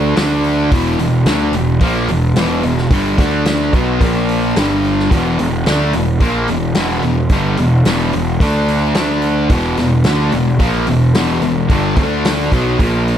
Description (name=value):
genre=blues rock power trio and southern rock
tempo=109 BPM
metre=4/4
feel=straight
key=E minor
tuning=A4 = 440 Hz
part: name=thick fuzz guitar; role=riff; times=0.0-13.2 s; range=E2 to D4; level=-14 LUFS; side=equal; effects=distortion
part: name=fuzz picked electric bass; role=bass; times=0.0-13.2 s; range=E1 to D2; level=-19 LUFS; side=equal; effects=overdrive
part: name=vintage drum kit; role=drums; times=0.2-13.2 s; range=hi-hat, kick drum, snare drum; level=-18 LUFS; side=equal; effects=none
room=moderate club reverb, RT60 0.8 s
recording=none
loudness=-12 LUFS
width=side -10 dB against mid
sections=0.0-13.2 A section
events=none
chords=0.0 D5; 0.7 Em; 3.2 D5; 3.7 B5; 4.0 A#5; 4.6 G5; 5.1 Em; 8.4 D5; 9.5 Em; 12.0 D5; 12.5 B5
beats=0.17 | 0.72 1.27 1.82 2.37 | 2.92 3.47 4.02 4.57 | 5.12 5.67 6.22 6.77 | 7.32 7.87 8.41 8.96 | 9.51 10.06 10.61 11.16 | 11.71 12.25 12.80